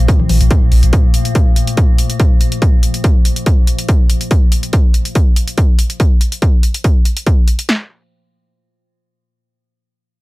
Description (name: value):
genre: driving peak-time techno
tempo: 142 BPM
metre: 4/4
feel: straight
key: unclear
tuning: A4 = 440 Hz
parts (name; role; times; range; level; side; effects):
- warm sub bass; bass; 0.0-0.9 s; Bb1; -11 LUFS; equal; overdrive, sidechain pumping, low-pass filter
- metallic inharmonic drone; drone; 0.0-4.4 s; Bb2 to F3; -22 LUFS; left 3 dB; chorus, built-in reverb, sidechain pumping
- techno drum kit; drums; 0.1-7.8 s; kick drum, snare drum; -11 LUFS; equal; overdrive
- techno drum kit; drums; 0.1-7.7 s; hi-hat, toms; -22 LUFS; left 1 dB; overdrive, sidechain pumping on hats, sidechain pumping on cymbals, sidechain pumping on toms
room: little or no reverb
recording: echo-heavy mix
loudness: -10 LUFS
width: side -19 dB against mid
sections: 0.0-7.7 A section; 7.7-10.2 B section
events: none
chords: 0.0 Bb5; 7.7 N.C.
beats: 0.08 0.51 | 0.93 1.35 1.77 2.20 | 2.62 3.04 3.46 3.89 | 4.31 4.73 5.15 5.58 | 6.00 6.42 6.84 7.27 | 7.69